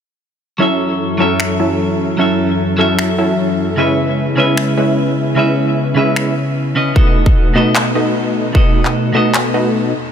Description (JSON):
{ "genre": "future bass", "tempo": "151 BPM", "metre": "4/4", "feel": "half-time", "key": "unclear", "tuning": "A4 = 439 Hz", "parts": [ { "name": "clean electric guitar", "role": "accompaniment", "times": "0.6-9.9 s", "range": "B2 to E5", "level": "-17 LUFS", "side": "left 2 dB", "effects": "sidechain pumping, ping-pong delay" }, { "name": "airy breathy pad", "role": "sustained chords", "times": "0.6-10.1 s", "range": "E2 to A4", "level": "-23 LUFS", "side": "equal", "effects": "chorus, sidechain pumping" }, { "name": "supersaw stab", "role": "riff", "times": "0.6-9.9 s", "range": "F#3 to E5", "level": "-16 LUFS", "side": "right 1 dB", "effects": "cassette tape, sidechain pumping, low-pass filter, ping-pong delay" }, { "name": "electronic finger snaps and handclaps", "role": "drums", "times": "1.4-9.4 s", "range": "none", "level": "-21 LUFS", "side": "left 1 dB", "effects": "none" }, { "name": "electronic kick drum", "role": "drums", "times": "7.0-8.6 s", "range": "none", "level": "-11 LUFS", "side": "equal", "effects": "none" } ], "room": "light reverb, digital ambience", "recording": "none", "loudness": "-12 LUFS", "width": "side -8 dB against mid", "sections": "0.6-10.1 A section", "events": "filter sweep on analog synth pad 0.6-10.1", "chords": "0.6 F#m7; 3.8 C#m7; 7.0 B7", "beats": "| 0.60 1.00 1.40 1.79 | 2.19 2.59 2.99 3.38 | 3.78 4.18 4.58 4.97 | 5.37 5.77 6.17 6.56 | 6.96 7.36 7.75 8.15 | 8.55 8.95 9.34 9.74" }